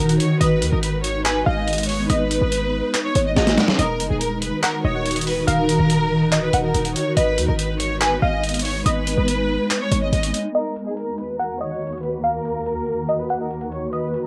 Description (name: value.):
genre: hip hop, trap.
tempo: 142 BPM.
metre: 4/4.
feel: half-time.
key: Eb minor.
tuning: A4 = 440 Hz.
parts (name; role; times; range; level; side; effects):
clear studio violin section; melody; 0.0-14.3 s; Ab4 to Eb5; -27 LUFS; equal; cassette tape, analog delay.
warbly dusty pluck; second line; 0.0-14.3 s; Db5 to Ab5; -28 LUFS; equal; chorus, cassette tape, analog delay.
granular cloud pad; sustained chords; 0.0-14.3 s; Eb2 to Bb4; -26 LUFS; equal; built-in reverb, cassette tape.
hard-hitting 808-style bass; bass; 0.0-10.3 s; Eb1 to Eb2; -26 LUFS; equal; none.
breakbeat sampler-style drum kit; drums; 0.1-14.2 s; handclaps, hi-hat, snare drum; -26 LUFS; equal; cassette tape.
room: moderate studio reverb, RT60 0.6 s.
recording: home recording on cassette, low-pass filter.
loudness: -21 LUFS.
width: mono.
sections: 0.0-10.5 A section; 10.5-14.3 B section.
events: drum fill 3.4-3.8; filter sweep 10.5-14.3.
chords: 0.4 Abm; 3.8 Ebm; 7.2 Abm; 10.5 Ebm.